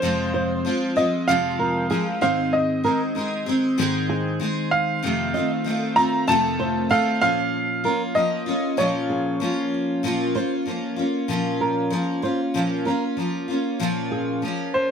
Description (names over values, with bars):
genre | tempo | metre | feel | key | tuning
acoustic pop | 96 BPM | 4/4 | swing 55% on 16ths | unclear | A4 = 441 Hz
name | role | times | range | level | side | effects
warm upright piano | melody | 0.0-9.7, 14.7-14.9 s | C5 to Bb5 | -23 LUFS | right 1 dB | none
picked steel-string acoustic guitar | accompaniment | 0.0-14.9 s | F2 to Ab4 | -22 LUFS | left 1 dB | double-tracked left and right
flamenco guitar | arpeggios | 0.3-14.4 s | Ab4 to Eb5 | -28 LUFS | right 3 dB | ping-pong delay
room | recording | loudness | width
moderate studio ambience, RT60 0.5 s | none | -20 LUFS | side -7 dB against mid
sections
0.0-10.0 A section; 10.0-14.9 B section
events
none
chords
0.0 Fm; 2.2 Ab; 5.0 F7; 7.2 Bbm